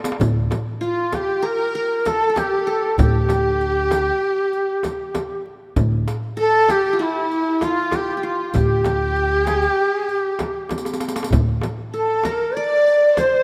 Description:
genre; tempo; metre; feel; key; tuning
Turkish makam ensemble; 194 BPM (eighths); 9/8; straight; unclear; A4 = 440 Hz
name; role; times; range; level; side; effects
darbuka; percussion; 0.0-13.3 s; none; -26 LUFS; equal; none
riq; percussion; 0.0-13.3 s; none; -36 LUFS; equal; none
upright bass; bass; 0.2-11.6 s; D2; -25 LUFS; equal; none
frame drum; percussion; 0.2-13.3 s; none; -28 LUFS; equal; none
qanun; second line; 0.8-13.4 s; E4-30c to D5; -30 LUFS; equal; none
rich studio violin section; second line; 0.8-13.4 s; E4-30c to D5; -31 LUFS; equal; none
breathy ney; melody; 0.9-13.4 s; E4-25c to D5; -21 LUFS; equal; none
room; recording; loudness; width
wet lush hall reverb, RT60 2.4 s; rough home demo mix; -20 LUFS; mono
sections
0.2-13.4 A section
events
drum fill 0.0, 10.7-11.3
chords
none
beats
| 0.21 0.52 0.82 1.13 1.44 1.75 2.06 2.37 2.68 | 2.99 3.29 3.60 3.91 4.22 4.53 4.84 5.15 5.46 | 5.77 6.08 6.38 6.69 7.00 7.31 7.62 7.93 8.24 | 8.54 8.85 9.16 9.47 9.78 10.09 10.40 10.71 11.02 | 11.32 11.63 11.94 12.25 12.56 12.87 13.18

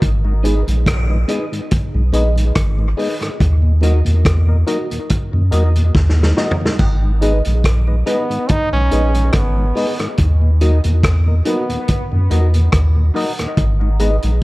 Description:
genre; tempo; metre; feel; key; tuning
dub reggae; 71 BPM; 4/4; swing 55% on 16ths; G# minor; A4 = 440 Hz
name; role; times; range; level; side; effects
warm sub bass; bass; 0.0-14.4 s; G#1 to F#2; -14 LUFS; equal; none
vintage drum kit; drums; 0.0-14.4 s; hi-hat, kick drum, rim click, snare drum, splash cymbal, toms; -19 LUFS; equal; none
mellow tonewheel organ; accompaniment; 0.2-14.3 s; D#2 to D#4; -25 LUFS; equal; slow rotary speaker, dub echo
electric guitar at the edge of break-up; accompaniment; 0.4-14.2 s; D#4 to D#5; -28 LUFS; right 3 dB; phaser, dub echo
percussive organ stab; stabs; 0.4-14.2 s; D#4 to D#5; -26 LUFS; left 3 dB; chorus, dub echo
brilliant trombone; melody; 8.1-11.9 s; B3 to D#4; -23 LUFS; right 1 dB; dub echo
room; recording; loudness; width
small room ambience; echo-heavy mix; -13 LUFS; side -20 dB against mid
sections
0.0-14.4 A section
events
break 0.0-6.8; drum fill 6.0-6.8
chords
0.0 G#m; 3.4 D#m; 6.8 G#m; 10.2 D#m; 13.6 G#m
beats
| 0.02 0.87 1.71 2.56 | 3.41 4.26 5.11 5.95 | 6.80 7.65 8.49 9.34 | 10.19 11.04 11.88 12.73 | 13.57 14.42

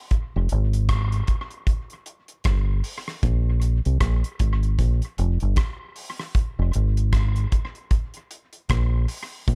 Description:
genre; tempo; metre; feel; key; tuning
roots reggae; 77 BPM; 4/4; swing 58% on 16ths; unclear; A4 = 438 Hz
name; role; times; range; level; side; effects
damped 70s drum kit; drums; 0.1-9.6 s; hi-hat, kick drum, rim click; -27 LUFS; equal; tape echo
deep dub fingered electric bass; bass; 0.4-9.6 s; F1 to C2; -23 LUFS; equal; none
room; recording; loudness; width
little or no reverb; echo-heavy mix; -23 LUFS; mono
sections
0.0-9.6 A section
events
none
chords
none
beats
| 0.11 0.89 1.67 2.45 | 3.23 4.01 4.79 5.58 | 6.36 7.14 7.92 8.70 | 9.48

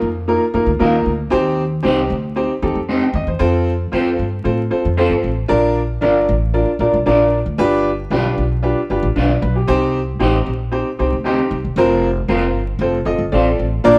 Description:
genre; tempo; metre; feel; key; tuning
soul; 115 BPM; 4/4; straight; unclear; A4 = 439 Hz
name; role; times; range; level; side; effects
clear upright piano; accompaniment; 0.0-14.0 s; Bb3 to G5; -19 LUFS; equal; none
upright bass; bass; 0.0-14.0 s; E1 to A2; -23 LUFS; equal; none
electric guitar at the edge of break-up; stabs; 0.8-13.5 s; Bb3 to D5; -23 LUFS; equal; phaser
room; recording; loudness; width
moderate stone room reverb, RT60 1.1 s; band playing live in one room, vinyl crackle; -17 LUFS; mono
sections
0.0-13.9 A section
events
none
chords
0.0 Ebsus2; 1.3 Cm; 3.4 F; 5.5 Bb; 7.6 G7; 9.7 Cm; 11.8 Fsus4; 12.8 F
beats
0.27 0.80 | 1.32 1.84 2.37 2.89 | 3.41 3.93 4.46 4.98 | 5.50 6.03 6.55 7.07 | 7.59 8.11 8.64 9.16 | 9.68 10.20 10.72 11.25 | 11.77 12.29 12.81 13.33 | 13.85

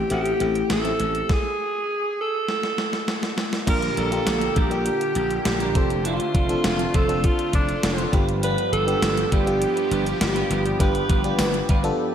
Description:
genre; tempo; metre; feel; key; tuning
1980s-style pop; 101 BPM; 4/4; straight; unclear; A4 = 439 Hz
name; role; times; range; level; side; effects
raspy alto saxophone; melody; 0.0-11.4 s; D4 to B4; -25 LUFS; right 1 dB; tape echo, slapback echo
FM electric piano; accompaniment; 0.0-12.1 s; G2 to A4; -27 LUFS; left 2 dB; chorus, slapback echo
glassy slap bass; bass; 0.0-11.9 s; F1 to Bb1; -27 LUFS; equal; none
gated 80s digital drum machine; drums; 0.1-12.0 s; crash cymbal, hi-hat, kick drum, snare drum, tambourine; -24 LUFS; equal; gated reverb, gated reverb snare
sweeping resonant pad; sustained chords; 3.7-12.1 s; D3 to G4; -32 LUFS; right 2 dB; chorus
clean electric guitar; riff; 3.7-12.0 s; G3 to C5; -31 LUFS; right 2 dB; wide subtle chorus, slapback echo
room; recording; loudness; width
moderate lush hall reverb, RT60 1.8 s; big arena sound; -20 LUFS; side -9 dB against mid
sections
0.0-3.7 A section; 3.7-12.1 B section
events
stop 1.3-3.7; drum fill 2.5-3.7; break 12.0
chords
0.0 Am7; 1.3 N.C.; 3.7 Bb6; 5.8 F6; 8.1 G7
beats
0.11 0.70 | 1.30 1.89 2.48 3.08 | 3.67 4.27 4.86 5.46 | 6.05 6.64 7.24 7.83 | 8.43 9.02 9.61 10.21 | 10.80 11.39 11.99

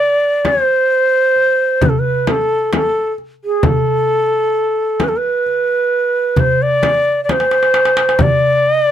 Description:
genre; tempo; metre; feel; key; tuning
Turkish makam ensemble; 132 BPM (eighths); 10/8; straight; D makam nikriz; A4 = 438 Hz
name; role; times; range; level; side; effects
bright reedy ney; melody; 0.0-8.9 s; G#4 to D5; -13 LUFS; equal; none
frame drum; percussion; 0.4-8.4 s; none; -18 LUFS; left 3 dB; none
darbuka; percussion; 0.5-8.8 s; none; -19 LUFS; right 1 dB; none
room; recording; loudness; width
light reverb; close, detailed microphones; -12 LUFS; side -10 dB against mid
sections
0.0-8.2 A section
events
drum fill 7.3-8.2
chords
none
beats
0.00 0.45 0.91 1.37 1.82 2.28 2.73 3.19 | 3.65 4.10 4.56 5.01 5.47 5.93 6.38 6.84 7.29 7.75 | 8.21 8.66

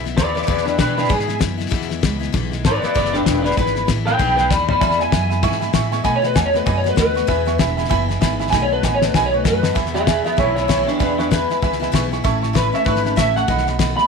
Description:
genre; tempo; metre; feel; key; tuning
rockabilly; 194 BPM; 4/4; swing 59% on 8ths; E major; A4 = 441 Hz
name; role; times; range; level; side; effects
picked steel-string acoustic guitar; accompaniment; 0.0-14.1 s; E2 to F#4; -26 LUFS; left 10 dB; none
upright bass; bass; 0.0-13.9 s; E1 to B2; -24 LUFS; right 2 dB; none
cloth-damped thuddy drum kit; drums; 0.1-14.0 s; hi-hat, kick drum, snare drum, toms; -21 LUFS; left 4 dB; none
electric guitar through a small old amp; melody; 0.2-14.1 s; D4 to B5; -19 LUFS; equal; ensemble chorus, tape echo
dark upright piano; accompaniment; 4.8-14.1 s; D#5 to C#6; -24 LUFS; right 16 dB; none
room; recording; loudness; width
light reverb, small room ambience; 1960s-style stereo with parts hard left and right; -16 LUFS; side -5 dB against mid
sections
0.0-9.8 A section; 9.8-14.1 B section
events
drum fill 4.5-4.8, 8.5-9.8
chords
0.0 E; 6.1 B7; 7.3 E; 8.5 B7; 9.8 E; 12.2 A; 13.5 B7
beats
0.18 0.49 0.80 | 1.10 1.41 1.72 2.03 | 2.34 2.65 2.96 3.27 | 3.58 3.89 4.20 4.51 | 4.82 5.13 5.44 5.75 | 6.05 6.36 6.67 6.98 | 7.29 7.60 7.91 8.22 | 8.53 8.84 9.14 9.45 | 9.76 10.07 10.38 10.69 | 11.00 11.31 11.62 11.93 | 12.24 12.55 12.86 13.17 | 13.48 13.79

